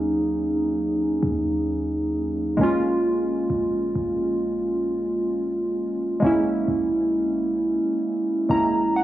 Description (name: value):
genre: contemporary R&B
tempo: 66 BPM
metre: 4/4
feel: straight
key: unclear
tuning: A4 = 440 Hz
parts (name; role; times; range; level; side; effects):
- warm analog keys; accompaniment; 0.0-9.0 s; F#3 to A#5; -21 LUFS; right 1 dB; chorus
- clean 808-style bass; bass; 0.0-9.0 s; A#1 to D#2; -32 LUFS; equal; none
room: light reverb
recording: recorded on a phone in the room, studio reverb, compression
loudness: -21 LUFS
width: side -13 dB against mid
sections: 0.0-9.0 A section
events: synth keys fill 8.0-9.0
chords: 0.0 D#m7; 2.6 A#m7; 6.2 A#m7b5